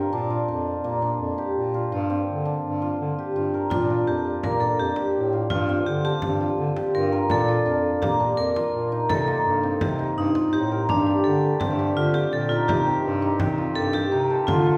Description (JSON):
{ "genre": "contemporary instrumental, chamber music in an uneven meter", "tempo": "167 BPM", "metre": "5/4", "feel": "straight", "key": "C dorian", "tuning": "A4 = 441 Hz", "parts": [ { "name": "hammered dulcimer", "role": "arpeggios", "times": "0.0-14.8 s", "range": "Bb3 to Bb4", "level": "-27 LUFS", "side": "equal", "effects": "none" }, { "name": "warm bass clarinet", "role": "bass", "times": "0.0-14.8 s", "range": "F2 to D3", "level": "-29 LUFS", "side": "equal", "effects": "none" }, { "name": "vibraphone with hard mallets", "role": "second line", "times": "3.7-14.8 s", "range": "D4 to Bb4", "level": "-29 LUFS", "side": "equal", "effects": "none" }, { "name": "frame drum", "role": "percussion", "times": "3.7-14.6 s", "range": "none", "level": "-34 LUFS", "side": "equal", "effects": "none" }, { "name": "warm woodwind section", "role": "sustained chords", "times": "10.9-14.8 s", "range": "D3 to G4", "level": "-35 LUFS", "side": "equal", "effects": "none" } ], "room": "wet scoring stage reverb, RT60 1.5 s", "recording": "recorded in a church or concert hall", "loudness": "-23 LUFS", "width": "mono", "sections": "0.0-10.9 A section; 10.9-14.8 B section", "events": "none", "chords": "0.1 Bb6; 1.9 Gm7; 3.7 Bb6; 5.5 Gm7; 7.3 Bb6; 9.1 Cm7; 10.9 Gsus2; 12.7 Cm" }